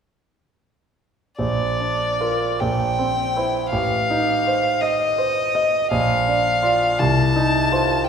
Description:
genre	classical, romantic duo for violin and grand piano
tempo	55 BPM (dotted quarters)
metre	6/8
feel	rubato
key	Bb major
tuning	A4 = 440 Hz
part	rich violin	melody	1.4-8.1 s	D5 to A5	-21 LUFS	left 1 dB	none
part	bright concert grand piano	accompaniment	1.4-8.1 s	A1 to Eb5	-20 LUFS	right 1 dB	none
room	wet recital hall reverb, RT60 1.3 s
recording	heard from further back in the room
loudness	-17 LUFS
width	side -7 dB against mid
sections	1.4-8.1 A section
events	none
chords	1.4 Bb; 2.6 C7/Bb; 3.7 F7/A; 5.9 Bb; 7.0 F7/C

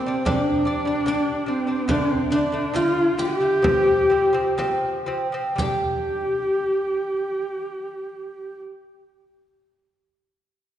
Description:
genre	mongolian traditional, Mongolian folk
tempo	58-76 BPM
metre	4/4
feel	straight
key	G minor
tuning	A4 = 439 Hz
part	dark horsehead fiddle	melody	0.0-8.6 s	C4 to G4	-22 LUFS	equal	none
part	guzheng	second line	0.0-8.6 s	Bb3 to G4	-27 LUFS	equal	none
part	lute	arpeggios	0.0-8.6 s	D3 to D4	-28 LUFS	left 1 dB	none
part	frame drum	percussion	0.3-6.1 s	none	-29 LUFS	right 2 dB	none
room	wet concert hall reverb, RT60 1.9 s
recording	heard from further back in the room, nothing above 11.0 kHz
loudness	-20 LUFS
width	side -11 dB against mid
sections	0.0-5.6 A section; 5.6-9.7 B section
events	slowing down 0.0-5.6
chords	0.0 G5; 1.9 D5; 3.6 F5; 5.6 G5

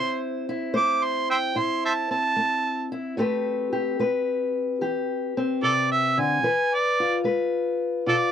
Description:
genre	acoustic country blues, solo or duo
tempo	74 BPM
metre	4/4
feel	swing 68% on 8ths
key	A minor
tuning	A4 = 440 Hz
part	mellow harmonica	melody	0.0-8.3 s	A4 to D6	-22 LUFS	right 3 dB	none
part	fingerpicked steel-string acoustic guitar	accompaniment	0.0-8.3 s	A2 to C5	-25 LUFS	left 3 dB	none
room	light reverb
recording	dry, close 1970s-style studio recording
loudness	-22 LUFS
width	side -9 dB against mid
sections	0.0-8.3 A section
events	none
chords	0.0 Dsus2; 3.2 Am9; 6.4 E7b9

